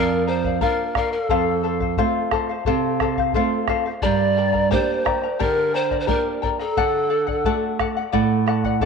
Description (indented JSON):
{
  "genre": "andean folk, Andean ensemble",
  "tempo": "88 BPM",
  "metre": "4/4",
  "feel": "straight",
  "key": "G minor",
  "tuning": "A4 = 439 Hz",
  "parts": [
    { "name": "mellow polished pan flute", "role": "melody", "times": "0.0-7.6 s", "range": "A4 to D5", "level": "-22 LUFS", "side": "right 1 dB", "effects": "none" },
    { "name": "charango", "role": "accompaniment", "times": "0.0-8.9 s", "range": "G4 to Bb5", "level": "-23 LUFS", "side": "left 10 dB", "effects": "none" },
    { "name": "flamenco guitar", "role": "accompaniment", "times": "0.0-8.9 s", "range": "F2 to G4", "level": "-24 LUFS", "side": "right 9 dB", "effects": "none" },
    { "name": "bombo", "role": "percussion", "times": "0.4-8.9 s", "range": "none", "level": "-27 LUFS", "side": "left 1 dB", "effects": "none" }
  ],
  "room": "wet spring reverb, RT60 2.1 s",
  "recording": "1960s-style stereo with parts hard left and right",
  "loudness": "-18 LUFS",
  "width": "side -5 dB against mid",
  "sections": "0.0-8.9 A section",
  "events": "none",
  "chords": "0.0 Bb; 1.3 F; 4.0 Gm; 6.8 D",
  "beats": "0.61 | 1.30 1.98 2.67 3.35 | 4.03 4.72 5.40 6.08 | 6.77 7.45 8.13 8.82"
}